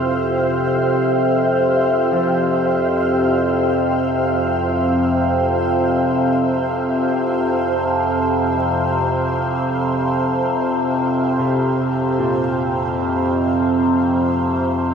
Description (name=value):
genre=dark ambient drone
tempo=free time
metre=none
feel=none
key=unclear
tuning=A4 = 440 Hz
part: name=granular cloud pad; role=sustained chords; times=0.0-14.9 s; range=C5 to G5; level=-22 LUFS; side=right 1 dB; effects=built-in reverb, shimmer reverb
part: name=clear grand piano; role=arpeggios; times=0.0-14.9 s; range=Bb2 to F3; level=-29 LUFS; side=left 2 dB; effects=diffuse ambient delay, shimmer reverb
part: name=overtone-sweeping drone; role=drone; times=0.0-14.9 s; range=F2 to C3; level=-17 LUFS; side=equal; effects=chorus, built-in reverb, phaser
part: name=quartz singing bowl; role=texture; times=0.0-14.9 s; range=none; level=barely audible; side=none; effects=none
room=wet huge ambient reverb, RT60 7.8 s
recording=in a vast, echoing space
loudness=-16 LUFS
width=side -6 dB against mid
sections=0.0-14.9 A section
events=fade-out on ambient pad 0.0-14.9; fade-out on grand piano 0.0-14.9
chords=0.0 Fsus2